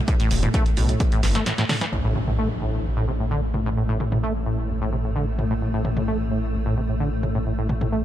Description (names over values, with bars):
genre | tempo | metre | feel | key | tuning
driving peak-time techno | 130 BPM | 4/4 | straight | unclear | A4 = 441 Hz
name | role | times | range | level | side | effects
swarming drone | drone | 0.0-8.0 s | A2 to A3 | -30 LUFS | left 1 dB | built-in reverb, sidechain pumping
acid bass, saw | riff | 0.1-8.0 s | A1 to A3 | -26 LUFS | equal | wide subtle chorus, sidechain pumping, dub echo
electronic kick drum | drums | 0.1-1.1 s | none | -21 LUFS | equal | none
punchy analog drum machine | drums | 0.1-7.9 s | hi-hat, snare drum, toms | -27 LUFS | equal | sidechain pumping on hats, low-pass filter on hats, sidechain pumping on toms, low-pass filter on toms, low-pass filter on snare
detuned saw bass | bass | 0.3-8.0 s | E1 to B1 | -25 LUFS | equal | sidechain pumping
impact | sound effects | 1.9-3.8 s | none | -31 LUFS | equal | none
room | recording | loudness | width
digital ambience | lossy compression artefacts | -21 LUFS | side -12 dB against mid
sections
0.0-1.9 A section; 1.9-8.0 B section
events
filter sweep on acid bass 0.0-1.9, 1.9-8.0; drum fill 1.2-1.9; break 1.5-1.9; impact 1.9-3.8; filter sweep on drum 1.9-8.0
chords
0.0 A5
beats
| 0.08 0.54 1.00 1.46 | 1.93 2.39 2.85 3.31 | 3.77 4.23 4.69 5.16 | 5.62 6.08 6.54 7.00 | 7.46 7.92